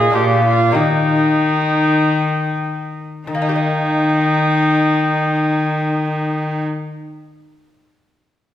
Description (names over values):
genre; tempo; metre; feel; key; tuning
classical, renaissance-style consort dance; free time; none; none; Eb major; A4 = 436 Hz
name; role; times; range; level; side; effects
warm cornet; melody; 0.0-6.6 s; D5 to G5; -22 LUFS; left 3 dB; none
rich viola; second line; 0.0-6.6 s; Eb4 to Ab4; -20 LUFS; equal; none
lute; accompaniment; 0.0-7.2 s; Bb2 to Eb5; -23 LUFS; left 3 dB; none
rich cello; bass; 0.0-6.6 s; Bb2 to Eb3; -18 LUFS; left 1 dB; none
room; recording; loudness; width
wet recital hall reverb, RT60 1.5 s; recorded in a church or concert hall; -14 LUFS; side -11 dB against mid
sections
0.0-3.3 A section; 3.3-5.9 B section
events
slowing down 0.0-3.3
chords
0.1 Bb; 0.7 Eb